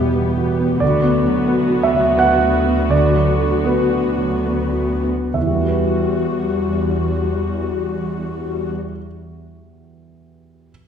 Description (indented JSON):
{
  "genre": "cinematic, emotional film score for orchestra",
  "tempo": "67-91 BPM",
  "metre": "3/4",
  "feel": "rubato",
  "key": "E minor",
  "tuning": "A4 = 441 Hz",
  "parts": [
    { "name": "dark symphonic viola section", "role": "accompaniment", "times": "0.0-8.7 s", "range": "G3 to G4", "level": "-22 LUFS", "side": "left 5 dB", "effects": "none" },
    { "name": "warm grand piano", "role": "accompaniment", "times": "0.0-10.7 s", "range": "D2 to F#5", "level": "-18 LUFS", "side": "right 2 dB", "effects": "none" },
    { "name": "dark chamber cello section", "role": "bass", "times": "0.0-8.7 s", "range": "D2 to E2", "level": "-23 LUFS", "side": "equal", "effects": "none" }
  ],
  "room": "wet recital hall reverb, RT60 1.7 s",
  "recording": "heard from further back in the room",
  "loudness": "-16 LUFS",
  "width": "side -8 dB against mid",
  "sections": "0.0-5.4 A section; 5.4-10.7 B section",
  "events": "slowing down 0.0-5.4",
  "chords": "0.0 Emadd9; 0.8 Bm/D; 5.4 Emadd9"
}